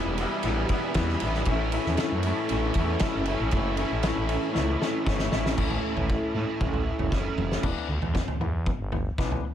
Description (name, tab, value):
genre	indie rock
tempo	117 BPM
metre	4/4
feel	straight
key	unclear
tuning	A4 = 439 Hz
part	overdriven electric guitar	riff	0.0-7.6 s	E2 to E4	-30 LUFS	right 6 dB	ensemble chorus, analog delay
part	twangy electric guitar	riff	0.0-9.5 s	A2 to E4	-32 LUFS	left 9 dB	none
part	growling FM bass	bass	0.0-9.4 s	E1 to A2	-29 LUFS	equal	none
part	loose indie drum kit	drums	0.2-9.4 s	crash cymbal, kick drum, ride cymbal, snare drum, toms	-29 LUFS	equal	none
room	small room ambience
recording	none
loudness	-24 LUFS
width	side -10 dB against mid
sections	0.0-5.6 A section; 5.6-7.6 B section; 7.6-9.5 C section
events	drum fill 4.5-5.6, 7.1-7.6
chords	0.0 Em; 1.5 A; 7.6 Em7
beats	0.45 0.96 | 1.47 1.98 2.50 3.01 | 3.52 4.03 4.55 5.06 | 5.57 6.09 6.60 7.12 | 7.63 8.15 8.66 9.18